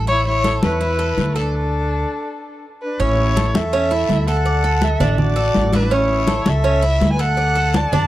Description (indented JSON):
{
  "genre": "latin, Cuban son and guajira",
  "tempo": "164 BPM",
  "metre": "4/4",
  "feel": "straight",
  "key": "A major",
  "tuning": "A4 = 439 Hz",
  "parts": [
    { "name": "Cuban tres", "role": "arpeggios", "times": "0.0-8.1 s", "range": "C#4 to D5", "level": "-23 LUFS", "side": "right 4 dB", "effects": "none" },
    { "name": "upright bass", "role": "bass", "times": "0.0-8.1 s", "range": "A1 to F#2", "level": "-20 LUFS", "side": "equal", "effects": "none" },
    { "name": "warm erhu", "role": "melody", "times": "0.1-8.1 s", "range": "A4 to A5", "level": "-21 LUFS", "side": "equal", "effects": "tape echo" },
    { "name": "silver concert flute", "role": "second line", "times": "0.1-8.1 s", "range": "D4 to D5", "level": "-27 LUFS", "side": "left 4 dB", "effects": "tape echo" },
    { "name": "congas", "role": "percussion", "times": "0.1-8.1 s", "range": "none", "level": "-21 LUFS", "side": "left 1 dB", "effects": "none" },
    { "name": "guiro", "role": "percussion", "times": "0.1-8.1 s", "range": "none", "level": "-35 LUFS", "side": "left 16 dB", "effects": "none" }
  ],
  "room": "light reverb",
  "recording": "dry, close 1970s-style studio recording",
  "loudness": "-15 LUFS",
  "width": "side -14 dB against mid",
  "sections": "0.0-3.0 A section; 3.0-8.1 B section",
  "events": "stop 1.5-3.0",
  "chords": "0.1 A; 1.5 D5; 3.0 A; 4.5 D; 5.9 A; 7.4 D",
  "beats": "| 0.08 0.45 0.81 1.18 | 1.54 1.91 2.27 2.64 | 3.00 3.37 3.73 4.09 | 4.46 4.82 5.19 5.55 | 5.92 6.28 6.65 7.01 | 7.38 7.74"
}